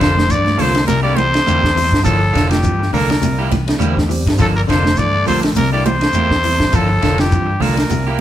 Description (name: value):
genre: afrobeat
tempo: 103 BPM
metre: 4/4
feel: swing 54% on 16ths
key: G dorian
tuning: A4 = 439 Hz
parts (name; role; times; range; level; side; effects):
- growling trumpet; melody; 0.0-8.2 s; G4 to D5; -18 LUFS; equal; none
- raspy baritone saxophone; second line; 0.0-8.2 s; G2 to D3; -27 LUFS; left 4 dB; none
- clean electric guitar; arpeggios; 0.0-8.2 s; C3 to F3; -24 LUFS; left 5 dB; none
- electric guitar at the edge of break-up; stabs; 0.0-8.2 s; F3 to A4; -24 LUFS; right 4 dB; none
- fingered electric bass; bass; 0.0-8.2 s; F1 to G2; -19 LUFS; equal; none
- compact cocktail drum kit; drums; 0.0-8.0 s; hi-hat, kick drum, ride cymbal, snare drum; -19 LUFS; equal; none
- shekere; percussion; 0.0-8.1 s; none; -26 LUFS; left 1 dB; none
- congas; percussion; 0.2-8.1 s; none; -23 LUFS; right 4 dB; none
- tine electric piano; accompaniment; 0.6-8.1 s; G3 to C5; -28 LUFS; right 1 dB; medium stereo tremolo
room: moderate large studio reverb, RT60 1.4 s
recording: band playing live in one room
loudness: -12 LUFS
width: side -12 dB against mid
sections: 0.0-8.2 A section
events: tine electric piano fill 3.5-4.4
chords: 0.0 Gm9; 0.9 C7; 2.1 Gm9; 3.2 C7; 4.4 Gm9; 5.6 C7; 6.7 Gm9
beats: 0.30 0.89 1.47 | 2.05 2.64 3.22 3.81 | 4.39 4.97 5.56 6.14 | 6.73 7.31 7.90